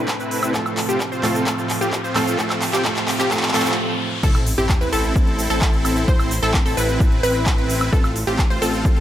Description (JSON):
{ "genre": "EDM, festival progressive house", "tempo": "130 BPM", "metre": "4/4", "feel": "straight", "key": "A minor", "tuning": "A4 = 438 Hz", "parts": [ { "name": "clear concert grand piano", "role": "accompaniment", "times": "0.0-4.3 s", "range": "A2 to F4", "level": "-26 LUFS", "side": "right 3 dB", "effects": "sidechain pumping, digital delay" }, { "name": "lush unison pad", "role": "sustained chords", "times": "0.0-4.2 s", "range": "C3 to A4", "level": "-31 LUFS", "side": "equal", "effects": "none" }, { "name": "wide unison pluck", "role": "arpeggios", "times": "0.0-9.0 s", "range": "G4 to C5", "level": "-26 LUFS", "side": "equal", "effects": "sidechain pumping, digital delay" }, { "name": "supersaw chords", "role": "riff", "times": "0.0-9.0 s", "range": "C4 to C5", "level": "-23 LUFS", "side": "equal", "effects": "sidechain pumping, low-pass filter, digital delay" }, { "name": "riser, swell and sub drop", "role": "sound effects", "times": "0.2-6.1 s", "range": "none", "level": "-30 LUFS", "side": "left 1 dB", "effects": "none" }, { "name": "big-room dance drum kit", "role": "drums", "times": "0.1-9.0 s", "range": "crash cymbal, handclaps, hi-hat, shaker, woodblock", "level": "-24 LUFS", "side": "equal", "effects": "none" }, { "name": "electronic kick drum", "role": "drums", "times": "0.1-8.9 s", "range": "none", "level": "-18 LUFS", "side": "equal", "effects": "high-pass filter on kick, high-pass filter on room" }, { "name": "fat analog bass", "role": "bass", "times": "4.2-9.0 s", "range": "A1", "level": "-24 LUFS", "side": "equal", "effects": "sidechain pumping" } ], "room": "light reverb", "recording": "none", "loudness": "-17 LUFS", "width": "side -12 dB against mid", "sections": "0.0-4.2 A section; 4.2-9.0 B section", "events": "build-up 0.0-4.2; drum fill 0.0-3.8; filter sweep on synth pluck 0.0-4.2; riser 0.2-4.2; swell 3.3-4.2; break 3.8-4.2; drop 4.2-9.0; impact 4.2-6.1", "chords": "0.0 Am; 0.5 F/A; 4.2 Am; 7.9 F/A", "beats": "0.08 | 0.54 1.00 1.46 1.93 | 2.39 2.85 3.31 3.77 | 4.23 4.70 5.16 5.62 | 6.08 6.54 7.00 7.46 | 7.93 8.39 8.85" }